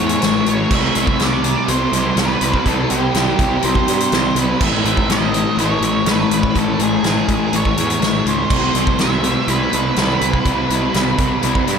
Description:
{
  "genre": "rock, shoegaze and dream pop",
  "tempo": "123 BPM",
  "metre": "4/4",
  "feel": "straight",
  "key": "unclear",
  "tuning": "A4 = 440 Hz",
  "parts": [
    { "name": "octave-fuzz lead guitar", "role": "melody", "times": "0.0-11.8 s", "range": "G4 to E5", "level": "-21 LUFS", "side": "right 2 dB", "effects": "distortion, analog delay" },
    { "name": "fuzz guitar", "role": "riff", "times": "0.0-11.8 s", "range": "A2 to C4", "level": "-18 LUFS", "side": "left 1 dB", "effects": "distortion, lush chorus" },
    { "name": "fuzz picked electric bass", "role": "bass", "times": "0.0-11.8 s", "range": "A1 to G2", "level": "-21 LUFS", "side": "right 1 dB", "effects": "overdrive" },
    { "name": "loose indie drum kit", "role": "drums", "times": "0.1-11.8 s", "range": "crash cymbal, hi-hat, kick drum, snare drum", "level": "-21 LUFS", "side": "right 1 dB", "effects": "none" }
  ],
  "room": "wet huge ambient reverb, RT60 9.3 s",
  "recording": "dreamy mix soaked in reverb",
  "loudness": "-14 LUFS",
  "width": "side -6 dB against mid",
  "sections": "0.0-11.8 A section",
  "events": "none",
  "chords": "0.0 A; 0.7 C5; 4.6 A; 8.5 Cmaj7(no3)"
}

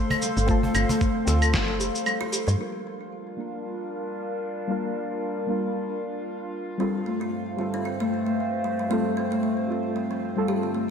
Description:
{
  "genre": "organic downtempo",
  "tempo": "114 BPM",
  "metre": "4/4",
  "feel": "swing 57% on 16ths",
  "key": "G minor",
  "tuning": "A4 = 440 Hz",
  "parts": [
    { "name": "deep mellow chord stab", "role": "accompaniment", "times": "0.0-10.9 s", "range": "G3 to Bb4", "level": "-31 LUFS", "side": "equal", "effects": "chorus, sidechain pumping, ping-pong delay" },
    { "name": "warbly tape-like pad", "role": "sustained chords", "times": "0.0-10.9 s", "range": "G2 to C6", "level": "-30 LUFS", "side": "right 1 dB", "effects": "chorus, built-in reverb, phaser, sidechain pumping" },
    { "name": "kalimba", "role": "arpeggios", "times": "0.0-2.5, 6.8-10.8 s", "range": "D3 to G4", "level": "-28 LUFS", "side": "left 2 dB", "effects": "ping-pong delay" },
    { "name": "electronic claves, cabasa and snare drum", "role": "drums", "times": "0.1-2.6 s", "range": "none", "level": "-27 LUFS", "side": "left 1 dB", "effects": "gated reverb" },
    { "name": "cajon", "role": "percussion", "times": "0.1-2.3 s", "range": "none", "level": "-34 LUFS", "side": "right 1 dB", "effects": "none" },
    { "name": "woody FM bass", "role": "bass", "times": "0.4-2.6 s", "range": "F1 to G2", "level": "-24 LUFS", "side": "equal", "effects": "sidechain pumping" },
    { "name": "electronic kick drum", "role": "drums", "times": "0.5-1.7 s", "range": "none", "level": "-26 LUFS", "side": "equal", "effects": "none" }
  ],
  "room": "wet lush hall reverb, RT60 2.2 s",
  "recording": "bright 1980s-style digital production",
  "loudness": "-24 LUFS",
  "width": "side -7 dB against mid",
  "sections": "0.0-2.6 A section; 2.6-10.9 B section",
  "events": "kick drops out 2.1-2.6; filter sweep on synth stab 2.6-10.9",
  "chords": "0.0 F/G; 2.6 Gm7; 6.8 F/G"
}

